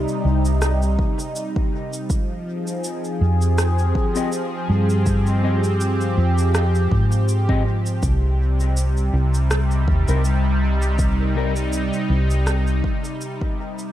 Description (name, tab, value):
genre	ambient dub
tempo	81 BPM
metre	4/4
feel	swing 55% on 16ths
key	C minor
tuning	A4 = 440 Hz
part	warm analog pad	sustained chords	0.0-13.9 s	C3 to Ab4	-24 LUFS	equal	chorus
part	hollow-body short-scale fingered electric bass	bass	0.0-12.8 s	C2 to Ab2	-18 LUFS	equal	none
part	electronic cabasa and rim click	drums	0.1-13.9 s	none	-29 LUFS	right 1 dB	dub echo
part	electronic kick drum	drums	1.0-13.5 s	none	-23 LUFS	equal	none
part	mellow electric guitar	stabs	4.2-11.5 s	G3 to Eb5	-30 LUFS	left 4 dB	analog chorus, dub echo
room	light reverb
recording	none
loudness	-18 LUFS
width	side -13 dB against mid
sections	0.0-13.9 A section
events	fade-out 12.0-13.9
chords	0.0 Cm; 2.1 Fm7; 8.0 Cm